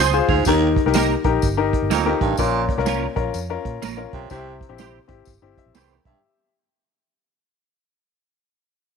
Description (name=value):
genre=uptempo 1960s-style soul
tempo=125 BPM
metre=4/4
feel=swing 63% on 8ths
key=unclear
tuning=A4 = 441 Hz
part: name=clean electric guitar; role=stabs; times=0.0-5.9 s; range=Bb3 to C5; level=-24 LUFS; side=right 12 dB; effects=ensemble chorus
part: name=vintage muted fingered electric bass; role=bass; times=0.0-6.1 s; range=G1 to Bb2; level=-26 LUFS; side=right 1 dB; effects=none
part: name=clear baby grand piano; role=accompaniment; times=0.1-6.5 s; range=Bb2 to G5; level=-22 LUFS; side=left 10 dB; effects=none
part: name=raspy baritone saxophone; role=riff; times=0.3-6.2 s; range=Eb2 to C3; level=-24 LUFS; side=right 11 dB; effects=none
part: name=warm soul drum kit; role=drums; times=0.3-6.1 s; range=hi-hat, kick drum, snare drum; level=-24 LUFS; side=right 4 dB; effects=none
part: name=tambourine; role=percussion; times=0.5-5.9 s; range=none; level=-31 LUFS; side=left 10 dB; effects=none
room=light reverb, small room reverb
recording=1960s-style stereo with parts hard left and right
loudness=-17 LUFS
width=side -6 dB against mid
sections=0.0-6.2 A section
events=fade-out 0.0-6.2; grand piano fill 5.3-6.2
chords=0.5 Eb; 2.4 Bbm; 4.3 C